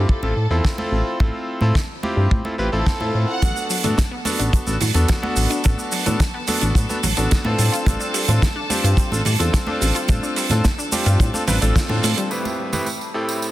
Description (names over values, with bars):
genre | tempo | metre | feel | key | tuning
nu-disco, nu disco | 108 BPM | 4/4 | straight | unclear | A4 = 439 Hz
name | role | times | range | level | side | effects
warm symphonic violin section | melody | 0.0-3.8 s | G4 to F#5 | -29 LUFS | right 1 dB | digital delay
bright electric grand piano | accompaniment | 0.0-13.5 s | A2 to B4 | -24 LUFS | equal | sidechain pumping, digital delay
chorused synth bass | bass | 0.0-12.1 s | A1 to A2 | -19 LUFS | equal | none
kick drum | drums | 0.1-11.9 s | none | -18 LUFS | equal | none
congas and tambourine | percussion | 0.2-13.5 s | none | -30 LUFS | right 3 dB | none
damped 70s drum kit | drums | 0.6-13.3 s | hi-hat, shaker, snare drum | -25 LUFS | right 3 dB | low-pass filter on hats, low-pass filter on snare, low-pass filter on perc, low-pass filter on room
bright chamber string section | sustained chords | 3.4-13.5 s | A4 to B5 | -31 LUFS | left 1 dB | sidechain pumping, low-pass filter
analog pluck | arpeggios | 3.4-12.3 s | F#3 to F4 | -30 LUFS | left 3 dB | chorus, sidechain pumping, digital delay
room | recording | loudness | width
light reverb, small room reverb | dense, heavily limited modern master | -17 LUFS | side -15 dB against mid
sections
0.0-12.3 A section; 12.3-13.5 B section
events
band accent 11.8; filter sweep on string section 12.3-13.5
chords
0.0 Fmaj9/A; 3.4 Bm7/A; 7.6 G7sus4/A; 12.3 Am9